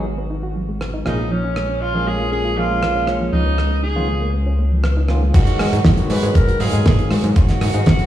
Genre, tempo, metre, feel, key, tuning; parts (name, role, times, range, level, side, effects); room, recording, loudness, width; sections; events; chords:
nu-disco, nu disco; 119 BPM; 4/4; straight; G# dorian; A4 = 440 Hz
warm tenor saxophone; melody; 0.0-8.1 s; C#4 to B4; -24 LUFS; equal; dub echo
barky tine electric piano; accompaniment; 0.0-8.1 s; D#3 to E#5; -25 LUFS; equal; vintage 12-bit sampler grit, sidechain pumping, tape echo
soft round pluck; arpeggios; 0.0-8.1 s; E#3 to F#4; -27 LUFS; right 2 dB; chorus, vintage 12-bit sampler grit, sidechain pumping, dub echo
fat analog bass; bass; 0.0-7.9 s; G#1 to G#2; -19 LUFS; equal
damped 70s drum kit; drums; 0.8-8.1 s; crash cymbal, hi-hat, rim click, snare drum; -21 LUFS; right 1 dB
electronic kick drum; drums; 5.3-8.0 s; -16 LUFS; equal; overdrive
light reverb, small room ambience; played on a big sound system in a bare room, stone room reverb; -15 LUFS; side -12 dB against mid
0.0-5.3 A section; 5.3-8.1 B section
drop 5.3-8.1
0.0 G#m7; 1.1 A#m7; 3.3 C#13; 5.3 G#m7